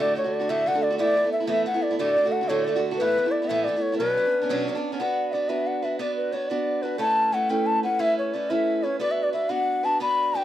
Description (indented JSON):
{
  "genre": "celtic folk",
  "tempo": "120 BPM (dotted quarters)",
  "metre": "6/8",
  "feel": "straight",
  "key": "B minor",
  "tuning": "A4 = 441 Hz",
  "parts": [
    { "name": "hollow bansuri", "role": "melody", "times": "0.0-10.4 s", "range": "B4 to B5", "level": "-23 LUFS", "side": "left 1 dB", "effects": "none" },
    { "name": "picked acoustic archtop guitar", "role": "accompaniment", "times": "0.0-10.4 s", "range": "D2 to B4", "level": "-26 LUFS", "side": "right 3 dB", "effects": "none" }
  ],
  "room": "moderate studio reverb, RT60 0.6 s",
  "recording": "dry, close 1970s-style studio recording",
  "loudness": "-22 LUFS",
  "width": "side -12 dB against mid",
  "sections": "0.0-5.0 A section; 5.0-10.4 B section",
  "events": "none",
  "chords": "0.0 D; 1.0 Asus2; 2.0 D; 3.0 Asus2; 4.0 Bmadd9; 5.0 Bm; 7.0 Aadd9; 9.0 Bm"
}